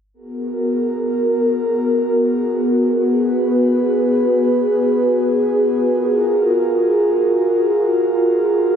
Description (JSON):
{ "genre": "drum and bass", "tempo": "free time", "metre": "none", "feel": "none", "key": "G# dorian", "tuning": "A4 = 439 Hz", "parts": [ { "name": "airy breathy pad", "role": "sustained chords", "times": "0.1-8.8 s", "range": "B3 to B4", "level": "-15 LUFS", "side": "equal", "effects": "chorus" } ], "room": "moderate lush hall reverb, RT60 2.6 s", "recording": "heavily compressed radio sound, faint mains hum", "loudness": "-15 LUFS", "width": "side -8 dB against mid", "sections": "0.1-8.8 A section", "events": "filter sweep on analog synth pad 0.1-8.8", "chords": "0.1 G#m9; 5.9 F#maj9" }